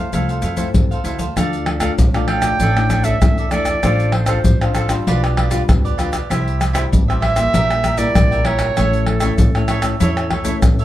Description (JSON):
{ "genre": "samba and choro", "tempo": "97 BPM", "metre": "4/4", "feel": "straight", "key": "D minor", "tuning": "A4 = 441 Hz", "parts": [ { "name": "clear clarinet", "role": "melody", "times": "0.0-9.7 s", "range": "A4 to G5", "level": "-20 LUFS", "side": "right 3 dB", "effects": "none" }, { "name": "cavaquinho", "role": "accompaniment", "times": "0.0-10.8 s", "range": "D4 to G5", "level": "-25 LUFS", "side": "right 3 dB", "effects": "none" }, { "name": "nylon-string guitar", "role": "accompaniment", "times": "0.0-10.8 s", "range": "G2 to C5", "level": "-24 LUFS", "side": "left 4 dB", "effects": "none" }, { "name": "upright bass", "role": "bass", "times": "0.0-10.8 s", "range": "A1 to F2", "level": "-20 LUFS", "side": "equal", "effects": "none" }, { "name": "egg shaker, surdo, pandeiro and tamborim", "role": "percussion", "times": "0.1-10.8 s", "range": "none", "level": "-17 LUFS", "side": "left 1 dB", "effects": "none" } ], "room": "moderate studio ambience, RT60 0.5 s", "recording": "dark, warm production", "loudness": "-14 LUFS", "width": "side -14 dB against mid", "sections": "0.0-1.4 A section; 1.4-10.8 B section", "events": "none", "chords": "0.0 Fmaj7; 1.4 Dm; 2.6 Asus4; 3.8 Dm7/A; 5.1 G7/B; 6.3 C; 7.5 Edim/Bb; 8.8 A", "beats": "0.13 0.75 | 1.37 1.99 2.60 3.22 | 3.84 4.46 5.07 5.69 | 6.31 6.92 7.54 8.16 | 8.78 9.39 10.01 10.63" }